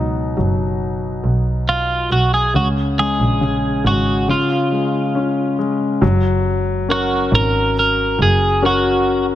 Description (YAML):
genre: pop ballad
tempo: 69 BPM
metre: 4/4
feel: straight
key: F# major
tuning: A4 = 440 Hz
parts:
  - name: warm concert grand piano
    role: accompaniment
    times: 0.0-9.4 s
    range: B2 to A#4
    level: -19 LUFS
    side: left 3 dB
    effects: none
  - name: bright double bass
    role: bass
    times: 0.0-9.4 s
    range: F#1 to C#2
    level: -19 LUFS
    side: right 1 dB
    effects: none
  - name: twelve-string electric guitar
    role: melody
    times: 1.7-9.3 s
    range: E#4 to A#4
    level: -18 LUFS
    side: right 1 dB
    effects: none
room: light reverb, small room reverb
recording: none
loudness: -15 LUFS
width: side -12 dB against mid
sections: 0.0-6.0 A section; 6.0-9.4 B section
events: none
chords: 0.0 Badd9; 2.5 C#5; 4.3 C#; 6.0 F#